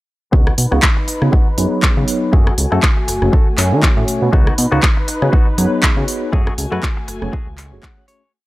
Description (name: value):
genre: filtered disco house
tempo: 120 BPM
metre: 4/4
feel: swing 56% on 16ths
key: unclear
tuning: A4 = 440 Hz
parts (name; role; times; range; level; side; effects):
- mellow tine electric piano; accompaniment; 0.3-8.2 s; Gb3 to Ab5; -21 LUFS; equal; medium stereo tremolo, phaser, sidechain pumping, low-pass filter
- dark studio string section; sustained chords; 0.3-8.3 s; A3 to Ab5; -26 LUFS; left 1 dB; vintage 12-bit sampler grit, sidechain pumping, low-pass filter
- direct-recorded clean electric guitar; riff; 0.3-8.3 s; A3 to Gb5; -25 LUFS; left 3 dB; sidechain pumping, low-pass filter
- fat analog bass; bass; 0.3-7.8 s; Gb1 to Eb3; -17 LUFS; equal; tube saturation, sidechain pumping, low-pass filter
- electronic kick drum; drums; 0.3-7.9 s; none; -14 LUFS; equal; none
- house drum kit; drums; 0.5-8.2 s; handclaps, hi-hat, rim click; -19 LUFS; equal; sidechain pumping on hats
room: little or no reverb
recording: dry, gritty hardware recording, transformer saturation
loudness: -13 LUFS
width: side -18 dB against mid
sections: 0.3-8.3 groove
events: filter sweep 0.3-8.3; fade-out 5.7-8.3; clean electric guitar fill 7.6-8.3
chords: 0.3 Db9sus4; 2.3 Gbmadd9; 4.3 Db9sus4; 6.3 Gbmadd9